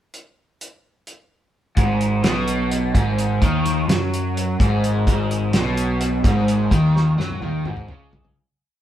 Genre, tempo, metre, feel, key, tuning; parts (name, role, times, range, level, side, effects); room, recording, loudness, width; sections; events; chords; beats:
psychedelic rock; 255 BPM (eighths); 7/8; straight; A4 = 441 Hz
cloth-damped thuddy drum kit; drums; 0.1-8.4 s; hi-hat, kick drum, snare drum, toms; -22 LUFS; equal
overdriven semi-hollow guitar; riff; 1.8-8.4 s; Ab2 to Gb3; -20 LUFS; equal; phaser
fuzz picked electric bass; bass; 1.8-8.3 s; Ab1 to Gb2; -25 LUFS; equal; overdrive
moderate studio reverb, RT60 0.9 s; band playing live in one room; -17 LUFS; side -11 dB against mid
0.1-1.8 pickup bar; 1.8-8.4 groove
fade-out 6.7-8.4; drum fill 6.9-8.4
0.1 N.C.; 1.8 Ab5
| 0.13 0.37 0.60 0.83 1.07 1.30 1.54 | 1.77 2.01 2.24 2.48 2.71 2.94 3.18 | 3.42 3.65 3.88 4.12 4.36 4.59 4.83 | 5.06 5.30 5.53 5.77 6.00 6.24 6.48 | 6.71 6.95 7.18 7.42 7.65 7.89 8.12